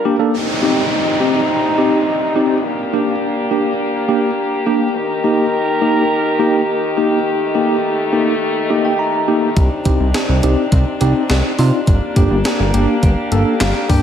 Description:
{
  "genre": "synth-pop",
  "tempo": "104 BPM",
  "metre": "4/4",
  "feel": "straight",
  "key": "unclear",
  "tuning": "A4 = 440 Hz",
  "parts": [
    { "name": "muted French horn section", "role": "sustained chords", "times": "0.0-14.0 s", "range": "C3 to Bb4", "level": "-18 LUFS", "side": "left 1 dB", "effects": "none" },
    { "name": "tine electric piano", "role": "accompaniment", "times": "0.1-14.0 s", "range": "Bb3 to Bb5", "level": "-17 LUFS", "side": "equal", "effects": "medium stereo tremolo" },
    { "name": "downlifter", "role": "sound effects", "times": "0.3-5.0 s", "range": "none", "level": "-24 LUFS", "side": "equal", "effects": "none" },
    { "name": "fat analog bass", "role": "bass", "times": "9.6-14.0 s", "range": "G1 to C3", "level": "-15 LUFS", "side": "equal", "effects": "none" },
    { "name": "gated 80s digital drum machine", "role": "drums", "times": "9.6-14.0 s", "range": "handclaps, hi-hat, kick drum, snare drum", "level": "-17 LUFS", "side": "equal", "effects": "gated reverb, gated reverb snare" }
  ],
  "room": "wet lush hall reverb, RT60 1.9 s, digital ambience",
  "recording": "dreamy mix soaked in reverb",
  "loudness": "-13 LUFS",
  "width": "side -8 dB against mid",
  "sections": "0.3-14.0 A section",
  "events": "break 0.0-0.3; tine electric piano fill 8.4-9.6, 13.3-14.0",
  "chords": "0.3 Cmadd9; 2.6 Gm; 5.0 Eb; 9.6 Cmadd9; 11.9 Gm",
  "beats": "| 0.34 0.91 1.49 2.07 | 2.64 3.22 3.80 4.38 | 4.95 5.53 6.11 6.68 | 7.26 7.84 8.41 8.99 | 9.57 10.14 10.72 11.30 | 11.88 12.45 13.03 13.61"
}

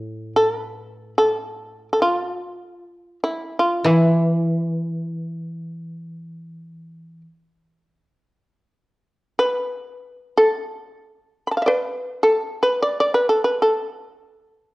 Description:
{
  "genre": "japanese traditional, Japanese chamber music",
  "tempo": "free time",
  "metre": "none",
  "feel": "none",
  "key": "E in sen",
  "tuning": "A4 = 440 Hz",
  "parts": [
    { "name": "shamisen", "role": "melody", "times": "0.0-14.7 s", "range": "E4 to B5", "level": "-18 LUFS", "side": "equal", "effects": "none" },
    { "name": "koto", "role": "accompaniment", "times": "0.0-7.2 s", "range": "A2 to E3", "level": "-21 LUFS", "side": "equal", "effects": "none" }
  ],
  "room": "moderate recital hall reverb, RT60 1.3 s",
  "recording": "worn, warbling old tape, cassette tape, warbly pitch drift",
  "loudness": "-18 LUFS",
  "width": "side -21 dB against mid",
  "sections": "0.0-14.7 A section",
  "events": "none",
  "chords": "none",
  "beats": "free time"
}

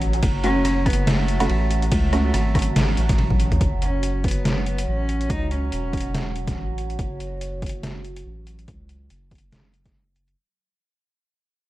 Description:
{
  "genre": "deep dubstep",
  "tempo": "142 BPM",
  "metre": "4/4",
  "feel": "swing 56% on 16ths, half-time",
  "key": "F# minor",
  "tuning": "A4 = 439 Hz",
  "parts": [
    { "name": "overtone-sweeping drone", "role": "sustained chords", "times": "0.0-10.4 s", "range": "F#3", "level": "-32 LUFS", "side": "right 2 dB", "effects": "chorus, built-in reverb, phaser" },
    { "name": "soft dub sub bass", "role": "bass", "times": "0.0-10.4 s", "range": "E1 to C#2", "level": "-24 LUFS", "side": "equal", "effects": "none" },
    { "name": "trip hop sampler-style drum kit", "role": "drums", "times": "0.0-10.4 s", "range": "hi-hat, ride cymbal, rim click, snare drum, toms", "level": "-26 LUFS", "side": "equal", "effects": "none" },
    { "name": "electronic kick drum", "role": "drums", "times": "0.2-9.9 s", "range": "none", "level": "-24 LUFS", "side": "equal", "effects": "overdrive" },
    { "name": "rich cello", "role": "melody", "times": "0.4-6.7 s", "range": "A3 to D#4", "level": "-28 LUFS", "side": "equal", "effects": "dub echo" },
    { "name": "filtered dub chord stab", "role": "stabs", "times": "0.4-3.0 s", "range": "A3 to F#4", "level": "-29 LUFS", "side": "right 1 dB", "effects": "analog chorus, dub echo" }
  ],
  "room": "little or no reverb",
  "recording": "vinyl crackle",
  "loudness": "-20 LUFS",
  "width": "side -16 dB against mid",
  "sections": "0.0-3.6 A section; 3.6-10.4 B section",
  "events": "drop 0.0-3.6; drum fill 3.2-3.6; fade-out 3.6-10.4",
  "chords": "0.0 F#m",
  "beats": "| 0.23 0.65 1.07 1.50 | 1.92 2.34 2.76 3.19 | 3.61 4.03 4.45 4.88 | 5.30 5.72 6.14 6.57 | 6.99 7.41 7.83 8.26 | 8.68 9.10 9.52 9.95"
}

